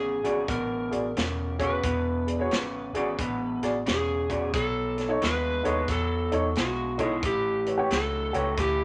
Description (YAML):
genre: electric blues shuffle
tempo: 89 BPM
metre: 4/4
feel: swing 65% on 8ths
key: unclear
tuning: A4 = 440 Hz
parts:
  - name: electric slide guitar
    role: melody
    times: 0.0-8.8 s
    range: F#4 to B4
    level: -32 LUFS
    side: equal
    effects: none
  - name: electric guitar through a small old amp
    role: riff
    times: 0.0-8.8 s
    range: E2 to G#3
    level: -34 LUFS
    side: equal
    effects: none
  - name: vintage muted fingered electric bass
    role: bass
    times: 0.0-8.8 s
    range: E1 to E2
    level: -36 LUFS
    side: equal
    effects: none
  - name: warm upright piano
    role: accompaniment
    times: 0.2-8.5 s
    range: D#4 to D5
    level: -32 LUFS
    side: equal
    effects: none
  - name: vintage drum kit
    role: drums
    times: 0.2-8.8 s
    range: hi-hat, kick drum, snare drum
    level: -34 LUFS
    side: equal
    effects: none
room: moderate studio reverb, RT60 0.8 s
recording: none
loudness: -27 LUFS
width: mono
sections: 0.0-8.8 A section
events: none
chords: 0.0 E7; 4.5 B7; 7.2 A7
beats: 0.49 1.16 | 1.84 2.52 3.19 3.87 | 4.54 5.22 5.89 6.57 | 7.24 7.91 8.59